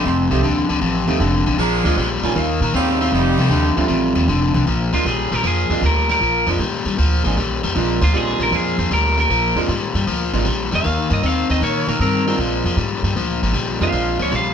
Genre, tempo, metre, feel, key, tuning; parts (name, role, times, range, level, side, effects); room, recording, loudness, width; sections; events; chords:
blues; 155 BPM; 4/4; swing 68% on 8ths; Bb mixolydian; A4 = 440 Hz
bright upright piano; accompaniment; 0.0-14.3 s; G3 to C6; -24 LUFS; right 7 dB
overdriven electric guitar; riff; 0.0-14.5 s; F2 to C4; -20 LUFS; left 4 dB
brilliant horn section; stabs; 0.0-3.8 s; G3 to Ab4; -23 LUFS; right 3 dB
upright bass; bass; 0.1-14.5 s; F1 to Bb2; -20 LUFS; right 1 dB
electric guitar through a small old amp; melody; 4.9-14.5 s; F4 to F5; -20 LUFS; right 1 dB
light reverb; band playing live in one room; -16 LUFS; side -8 dB against mid
0.0-4.7 A section; 4.7-14.5 B section
0.0 F9; 1.6 Bb9; 2.4 Eb9; 3.1 F9; 4.7 Bb9; 10.8 Ebadd9; 12.4 Bb9